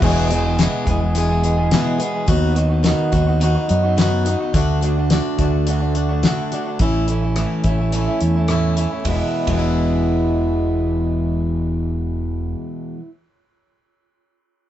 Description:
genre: folk rock and heartland rock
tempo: 106 BPM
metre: 4/4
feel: straight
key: E major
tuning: A4 = 440 Hz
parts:
  - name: picked plugged-in swing-style acoustic guitar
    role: accompaniment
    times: 0.0-13.1 s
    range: E2 to G#4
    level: -22 LUFS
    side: left 1 dB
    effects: none
  - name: electric guitar through a small old amp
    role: riff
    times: 0.0-13.0 s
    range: E2 to G#4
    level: -24 LUFS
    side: right 1 dB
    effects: none
  - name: fingered electric bass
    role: bass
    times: 0.0-12.5 s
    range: E1 to F#2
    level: -19 LUFS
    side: equal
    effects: none
  - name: damped 70s drum kit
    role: drums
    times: 0.0-9.6 s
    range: crash cymbal, hi-hat, kick drum, ride cymbal, rim click, snare drum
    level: -21 LUFS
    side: left 1 dB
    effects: none
room: light reverb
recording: band playing live in one room, nothing above 8.0 kHz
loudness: -16 LUFS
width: side -12 dB against mid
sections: 0.0-9.1 A section; 9.1-11.3 B section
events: none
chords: 0.0 E; 2.3 B/D#; 4.5 D; 6.8 A; 9.1 E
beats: | 0.02 0.58 1.15 1.71 | 2.28 2.84 3.41 3.97 | 4.54 5.10 5.67 6.23 | 6.79 7.36 7.92 8.49 | 9.05 9.62 10.18 10.74

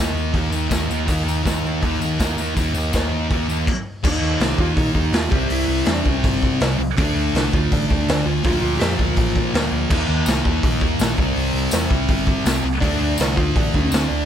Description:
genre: garage rock duo or trio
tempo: 164 BPM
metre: 4/4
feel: straight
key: unclear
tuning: A4 = 444 Hz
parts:
  - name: thick fuzz guitar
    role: riff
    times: 0.0-14.3 s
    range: Bb2 to Eb4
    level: -21 LUFS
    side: equal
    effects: distortion
  - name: overdriven picked electric bass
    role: bass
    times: 0.0-14.2 s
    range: G1 to F2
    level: -24 LUFS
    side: equal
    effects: none
  - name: tambourine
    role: percussion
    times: 0.2-3.6, 10.3-14.0 s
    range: none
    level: -33 LUFS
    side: left 6 dB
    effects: none
  - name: raw garage drum kit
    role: drums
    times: 0.3-14.0 s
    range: crash cymbal, hi-hat, kick drum, snare drum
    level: -22 LUFS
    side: equal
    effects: none
  - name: clean lap steel guitar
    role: melody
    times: 4.1-9.5, 12.8-14.3 s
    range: C4 to G4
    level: -25 LUFS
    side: equal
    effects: none
room: little or no reverb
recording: none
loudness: -17 LUFS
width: side -9 dB against mid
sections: 0.0-4.0 A section; 4.0-14.3 B section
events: stop 3.7-4.0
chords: 0.0 Eb5; 5.3 C; 7.0 D5; 8.4 Bb/D; 9.9 Eb5; 11.2 C5; 12.8 D5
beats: 0.35 0.72 | 1.09 1.45 1.82 2.19 | 2.56 2.93 3.30 3.66 | 4.03 4.40 4.77 5.13 | 5.50 5.87 6.24 6.60 | 6.97 7.33 7.70 8.07 | 8.44 8.80 9.17 9.53 | 9.90 10.27 10.63 11.00 | 11.36 11.73 12.10 12.46 | 12.83 13.19 13.56 13.92

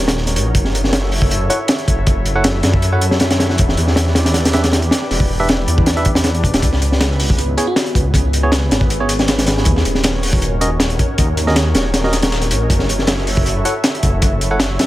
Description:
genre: drum and bass, jungle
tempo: 158 BPM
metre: 4/4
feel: straight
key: unclear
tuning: A4 = 440 Hz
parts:
  - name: warbly tape-like pad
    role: sustained chords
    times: 0.0-14.9 s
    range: B3 to E5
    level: -23 LUFS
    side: equal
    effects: chorus, built-in reverb, vintage 12-bit sampler grit
  - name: detuned saw bass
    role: bass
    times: 0.0-14.9 s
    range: D1 to F#2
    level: -18 LUFS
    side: equal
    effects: none
  - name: crunchy breakbeat drum kit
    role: drums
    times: 0.1-14.9 s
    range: hi-hat, kick drum, snare drum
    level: -16 LUFS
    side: equal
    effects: none
  - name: bell-like FM electric piano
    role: melody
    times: 1.5-1.6, 7.6-8.2, 13.7 s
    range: F#4 to C#5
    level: -26 LUFS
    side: left 2 dB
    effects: chorus, dub echo
  - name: bright tine electric piano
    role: stabs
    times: 1.5-14.6 s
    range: B3 to F#5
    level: -23 LUFS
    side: right 2 dB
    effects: dub echo
  - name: dusty soul sampler-style drum kit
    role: drums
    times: 6.6-14.9 s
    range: hi-hat, snare drum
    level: -27 LUFS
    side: left 2 dB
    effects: overdrive, high-pass filter on hats, high-pass filter on snare, high-pass filter on room
room: small room reverb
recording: none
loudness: -13 LUFS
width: side -16 dB against mid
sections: 0.0-14.9 A section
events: none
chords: 0.0 D#m7; 0.6 F#m7; 3.6 Em7; 6.6 C#m7; 9.7 D#m7; 12.7 F#m7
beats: 0.17 | 0.55 0.93 1.31 1.69 | 2.07 2.45 2.83 3.21 | 3.59 3.97 4.35 4.73 | 5.11 5.49 5.87 6.25 | 6.63 7.01 7.38 7.76 | 8.14 8.53 8.90 9.28 | 9.66 10.04 10.42 10.80 | 11.18 11.56 11.94 12.32 | 12.70 13.08 13.46 13.84 | 14.22 14.60

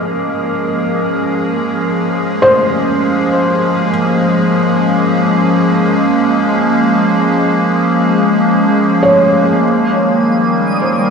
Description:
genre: ambient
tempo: free time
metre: none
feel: none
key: Bb dorian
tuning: A4 = 440 Hz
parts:
  - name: evolving wavetable pad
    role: sustained chords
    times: 0.0-11.1 s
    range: Eb3 to Bb4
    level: -12 LUFS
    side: equal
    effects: chorus, built-in reverb
  - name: felt-muted upright piano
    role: arpeggios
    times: 0.0-11.1 s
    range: C5 to Eb5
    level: -16 LUFS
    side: equal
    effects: tape echo
  - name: organ-like drone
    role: drone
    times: 0.0-9.8 s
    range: Bb3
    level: -24 LUFS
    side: right 1 dB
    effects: none
  - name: twinkling granular texture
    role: texture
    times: 10.2-11.1 s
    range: Eb6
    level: -26 LUFS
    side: right 3 dB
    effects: built-in reverb
room: wet concert hall reverb, RT60 1.9 s, digital ambience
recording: none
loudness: -11 LUFS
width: side -5 dB against mid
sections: 0.0-9.6 A section; 9.6-11.1 B section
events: fade-in on ambient pad 0.0-9.6; fade-out on synth drone 0.0-9.6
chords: 0.0 Bbm7; 9.6 Eb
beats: free time

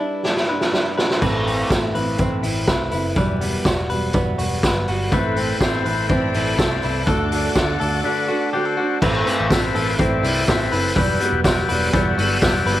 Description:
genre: jangly indie pop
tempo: 123 BPM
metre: 4/4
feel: straight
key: A dorian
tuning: A4 = 437 Hz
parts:
  - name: fingerpicked steel-string acoustic guitar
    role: accompaniment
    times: 0.0-12.8 s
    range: E2 to B4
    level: -25 LUFS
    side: right 4 dB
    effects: none
  - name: direct-recorded clean electric guitar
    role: arpeggios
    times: 0.0-12.8 s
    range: G3 to B4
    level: -25 LUFS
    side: left 2 dB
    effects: tape echo
  - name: raw garage drum kit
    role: drums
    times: 0.3-12.8 s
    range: crash cymbal, hi-hat, kick drum, snare drum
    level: -20 LUFS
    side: equal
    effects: none
  - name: vintage muted picked electric bass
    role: bass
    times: 1.2-12.8 s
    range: E1 to D2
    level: -25 LUFS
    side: equal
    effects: none
  - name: tambourine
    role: percussion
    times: 1.2-12.8 s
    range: none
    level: -40 LUFS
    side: right 9 dB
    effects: none
  - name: combo organ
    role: accompaniment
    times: 5.1-12.8 s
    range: C4 to D5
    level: -24 LUFS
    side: left 6 dB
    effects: none
  - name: clear studio string section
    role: sustained chords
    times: 5.1-9.0 s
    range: C4 to D6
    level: -31 LUFS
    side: right 1 dB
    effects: none
room: light reverb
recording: vinyl crackle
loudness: -17 LUFS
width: side -14 dB against mid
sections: 0.0-1.2 A section; 1.2-9.0 B section; 9.0-12.8 C section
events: break 0.0-1.2; drum fill 0.2-1.2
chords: 0.0 G6; 1.2 Amadd9; 3.2 Emadd9; 5.1 Amadd9; 7.1 D; 9.0 Amadd9; 11.0 Emadd9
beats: 0.24 0.73 | 1.22 1.71 2.20 2.68 | 3.17 3.66 4.15 4.64 | 5.12 5.61 6.10 6.59 | 7.07 7.56 8.05 8.53 | 9.02 9.51 9.99 10.48 | 10.96 11.45 11.93 12.42

